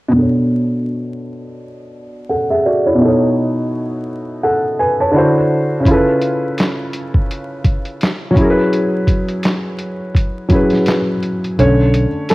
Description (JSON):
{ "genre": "lo-fi hip hop", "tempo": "84 BPM", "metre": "4/4", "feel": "swing 58% on 16ths", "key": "B dorian", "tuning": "A4 = 440 Hz", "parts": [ { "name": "felt-muted upright piano", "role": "accompaniment", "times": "0.1-12.3 s", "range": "B2 to A5", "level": "-15 LUFS", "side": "equal", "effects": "cassette tape, low-pass filter" }, { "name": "lo-fi sampler-style drum kit", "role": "drums", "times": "5.9-12.3 s", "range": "handclaps, hi-hat, kick drum, snare drum", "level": "-16 LUFS", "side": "equal", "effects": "vintage 12-bit sampler grit, cassette tape" }, { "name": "vintage muted fingered electric bass", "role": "bass", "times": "11.6-12.0 s", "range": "B1", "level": "-13 LUFS", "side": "equal", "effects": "tube saturation" } ], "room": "light reverb", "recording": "home recording on cassette, vinyl crackle", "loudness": "-13 LUFS", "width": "side -19 dB against mid", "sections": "0.1-11.6 A section", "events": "filter sweep on felt piano 0.1-11.6; kick muted 11.6-12.3", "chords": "0.1 Bm9; 3.0 B9; 5.1 D9; 5.9 C#7alt; 8.4 F#9sus4; 11.6 Bm9", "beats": "| 0.14 0.86 1.57 2.29 | 3.00 3.71 4.43 5.14 | 5.86 6.57 7.29 8.00 | 8.71 9.43 10.14 10.86 | 11.57 12.29" }